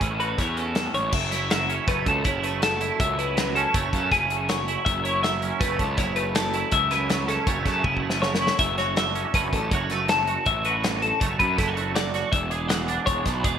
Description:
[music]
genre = math rock and midwest emo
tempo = 161 BPM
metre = 5/4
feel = straight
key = unclear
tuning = A4 = 439 Hz
[part]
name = twangy electric guitar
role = accompaniment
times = 0.0-13.6 s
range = E2 to G#4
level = -29 LUFS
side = right 9 dB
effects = ensemble chorus
[part]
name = twelve-string electric guitar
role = arpeggios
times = 0.0-13.6 s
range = G#4 to F#5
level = -25 LUFS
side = left 3 dB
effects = wide subtle chorus
[part]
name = fuzz picked electric bass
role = bass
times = 0.0-13.6 s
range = E1 to F#2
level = -29 LUFS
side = equal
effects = overdrive
[part]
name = loose indie drum kit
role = drums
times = 0.0-13.5 s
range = crash cymbal, hi-hat, kick drum, snare drum, toms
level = -27 LUFS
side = equal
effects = gated reverb
[sound]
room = moderate lush hall reverb, RT60 1.8 s, small room ambience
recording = bright 1980s-style digital production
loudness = -21 LUFS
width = side -8 dB against mid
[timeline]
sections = 0.0-1.1 A section; 1.1-13.6 B section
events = drum fill 7.8-8.6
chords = 0.0 Amaj9; 1.1 F#m7; 8.6 Dmaj9/F#; 12.3 E9

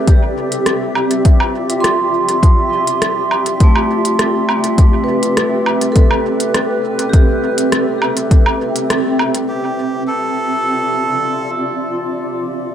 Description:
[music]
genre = ambient dub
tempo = 102 BPM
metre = 4/4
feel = straight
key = D dorian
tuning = A4 = 440 Hz
[part]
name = granular cloud pad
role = sustained chords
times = 0.0-12.7 s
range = C4 to E5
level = -18 LUFS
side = equal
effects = built-in reverb
[part]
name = vibraphone with medium mallets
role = arpeggios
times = 0.0-10.0 s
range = A3 to C6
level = -19 LUFS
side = right 1 dB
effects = dub echo
[part]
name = electronic kick drum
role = drums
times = 0.1-8.4 s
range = none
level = -10 LUFS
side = equal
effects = none
[part]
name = organic electronic drum kit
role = drums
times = 0.1-9.5 s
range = hi-hat, rim click, woodblock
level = -19 LUFS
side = equal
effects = dub echo
[part]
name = melodica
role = melody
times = 9.5-11.5 s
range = G4 to A4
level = -19 LUFS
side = right 2 dB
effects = dub echo
[sound]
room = moderate scoring stage reverb, RT60 1.9 s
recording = none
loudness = -12 LUFS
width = side -10 dB against mid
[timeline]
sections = 0.0-9.5 A section; 9.5-12.7 B section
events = band accent 8.9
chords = 0.1 Dm11; 4.8 Cmaj9; 9.5 Dm11

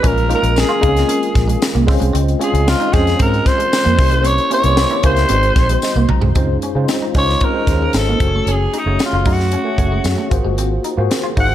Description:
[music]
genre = polished 1980s jazz-funk pop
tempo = 114 BPM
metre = 4/4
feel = straight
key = Db major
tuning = A4 = 441 Hz
[part]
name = raspy alto saxophone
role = melody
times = 0.0-11.5 s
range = Eb4 to Gb5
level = -18 LUFS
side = equal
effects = none
[part]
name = tine electric piano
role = accompaniment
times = 0.0-11.5 s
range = Ab3 to Bb5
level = -20 LUFS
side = left 1 dB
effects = overdrive, fast stereo tremolo, analog chorus
[part]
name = clean electric guitar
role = riff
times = 0.0-11.5 s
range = G3 to F4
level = -25 LUFS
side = right 3 dB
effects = wide subtle chorus
[part]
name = vintage muted fingered electric bass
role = bass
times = 0.0-11.5 s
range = Gb1 to Db3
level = -17 LUFS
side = equal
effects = none
[part]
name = crisp fusion drum kit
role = drums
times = 0.0-11.5 s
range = hi-hat, kick drum, snare drum, toms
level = -19 LUFS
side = equal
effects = none
[part]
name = tambourine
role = percussion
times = 0.6-11.2 s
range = none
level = -31 LUFS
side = left 9 dB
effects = none
[sound]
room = studio ambience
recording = dark, warm production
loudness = -13 LUFS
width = side -12 dB against mid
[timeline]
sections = 0.0-6.4 A section; 6.4-11.5 B section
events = tine electric piano fill 5.6-6.4; drum fill 5.8-6.4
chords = 0.0 Bbm7; 1.9 Dbmaj7; 4.0 C7b9; 5.3 Ab7; 6.4 Dbmaj9; 8.2 Gbmadd9; 10.3 Ab13

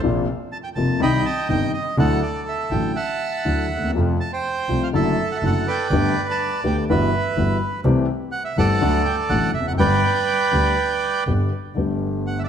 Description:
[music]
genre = tango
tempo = 123 BPM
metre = 4/4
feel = rubato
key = G major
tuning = A4 = 440 Hz
[part]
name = warm concert grand piano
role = accompaniment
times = 0.0-12.5 s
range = F1 to G4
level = -22 LUFS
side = left 3 dB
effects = none
[part]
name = clear double bass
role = bass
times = 0.0-12.5 s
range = F1 to F2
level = -24 LUFS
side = right 2 dB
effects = none
[part]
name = bandoneon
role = melody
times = 0.5-12.5 s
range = A4 to B5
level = -22 LUFS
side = right 3 dB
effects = slapback echo
[sound]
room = light reverb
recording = close, detailed microphones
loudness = -18 LUFS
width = side -8 dB against mid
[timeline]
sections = 0.0-11.8 A section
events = none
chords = 0.0 Bbsus2; 1.0 Cm; 2.0 Dadd9; 3.9 F; 4.9 Dadd9/F#; 5.9 Gadd9; 6.9 Emadd9/G; 7.8 C6; 8.8 D; 9.8 G; 11.8 Gadd9

